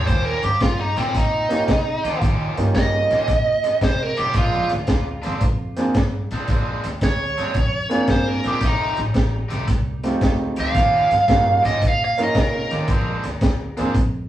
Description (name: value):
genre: electric blues shuffle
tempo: 112 BPM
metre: 4/4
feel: swing 67% on 8ths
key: unclear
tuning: A4 = 440 Hz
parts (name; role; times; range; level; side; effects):
- biting lead guitar; melody; 0.0-12.7 s; C4 to F5; -21 LUFS; right 2 dB; overdrive, tape echo
- overdriven electric guitar; riff; 0.0-14.0 s; Bb2 to G4; -28 LUFS; equal; none
- upright bass; bass; 0.0-14.3 s; F1 to Eb3; -26 LUFS; equal; none
- crunchy breakbeat drum kit; drums; 0.1-14.1 s; hi-hat, kick drum, snare drum; -22 LUFS; equal; none
- clear upright piano; accompaniment; 1.5-13.9 s; A3 to Bb4; -23 LUFS; right 1 dB; none
room: moderate booth ambience, RT60 0.2 s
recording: rough rehearsal-room recording, tube saturation, studio reverb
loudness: -17 LUFS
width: side -12 dB against mid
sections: 0.0-14.3 A section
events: none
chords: 0.1 Eb9; 4.4 Bb9; 8.6 F9; 10.8 Eb9; 12.9 Bb9